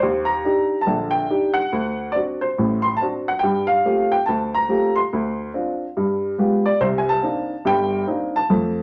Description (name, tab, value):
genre	solo jazz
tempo	142 BPM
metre	4/4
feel	swing 67% on 8ths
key	unclear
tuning	A4 = 443 Hz
part	warm upright piano	solo	0.0-8.8 s	G1 to C6	-21 LUFS	equal	none
room	wet studio reverb, RT60 0.9 s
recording	none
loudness	-21 LUFS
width	mono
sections	0.0-8.8 A section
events	none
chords	0.0 Ebmaj7; 1.7 D7; 3.4 Gm11; 5.1 Dm7; 6.0 G7b9; 6.8 Cm9